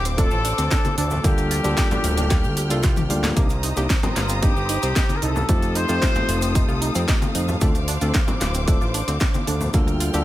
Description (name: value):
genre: nu-disco, nu disco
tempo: 113 BPM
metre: 4/4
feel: straight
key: C dorian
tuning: A4 = 440 Hz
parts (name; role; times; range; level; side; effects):
- mellow trumpet section; melody; 0.0-6.8 s; F4 to C5; -28 LUFS; left 2 dB; dub echo
- rich symphonic string section; sustained chords; 0.0-10.2 s; Bb3 to F6; -31 LUFS; left 1 dB; sidechain pumping
- fat analog bass; bass; 0.0-10.2 s; D1 to F2; -24 LUFS; equal; sidechain pumping
- analog pluck; arpeggios; 0.1-10.2 s; A3 to F5; -31 LUFS; right 3 dB; chorus, sidechain pumping, dub echo
- house drum kit; drums; 0.1-10.2 s; hi-hat, snare drum, toms; -27 LUFS; equal; none
- cabasa and congas; percussion; 0.1-10.2 s; none; -31 LUFS; left 2 dB; none
- bright tine electric piano; accompaniment; 0.2-10.2 s; G3 to A4; -27 LUFS; left 1 dB; vintage 12-bit sampler grit, ping-pong delay
- electronic kick drum; drums; 0.2-9.8 s; none; -20 LUFS; equal; none
room: digital ambience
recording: none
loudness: -18 LUFS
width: side -14 dB against mid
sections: 0.0-10.2 A section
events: drum fill 2.8-3.4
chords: 0.0 Dm7; 1.2 Gm7/D; 3.4 Cm7; 5.5 F7; 7.6 Dm7; 9.7 Gm7/D